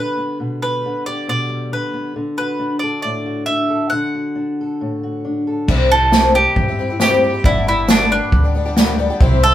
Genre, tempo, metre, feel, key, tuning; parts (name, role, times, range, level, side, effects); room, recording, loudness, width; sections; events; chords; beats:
indie folk with a building arrangement; 136 BPM; 4/4; straight; G major; A4 = 440 Hz
bowl-back mandolin; melody; 0.0-9.5 s; D4 to F#5; -18 LUFS; right 1 dB
fingerpicked steel-string acoustic guitar; accompaniment; 0.0-5.7 s; A2 to A4; -22 LUFS; left 1 dB
picked twelve-string acoustic guitar; accompaniment; 5.7-9.5 s; G2 to G4; -19 LUFS; left 3 dB
upright bass; bass; 5.7-9.5 s; G1 to G2; -19 LUFS; equal
unplugged drum kit; drums; 5.7-9.3 s; crash cymbal, kick drum, snare drum; -17 LUFS; equal
tambourine; percussion; 6.1-8.9 s; -31 LUFS; right 6 dB
warm chamber string section; sustained chords; 9.2-9.5 s; G4 to C6; -25 LUFS; equal
moderate studio reverb, RT60 0.6 s; band playing live in one room; -15 LUFS; side -12 dB against mid
0.0-5.7 A section; 5.7-9.5 B section
0.0 G/B; 2.2 D; 5.7 C; 7.5 G
| 0.40 0.84 1.28 1.72 | 2.16 2.61 3.05 3.49 | 3.93 4.37 4.81 5.25 | 5.70 6.13 6.58 7.01 | 7.46 7.89 8.33 8.77 | 9.21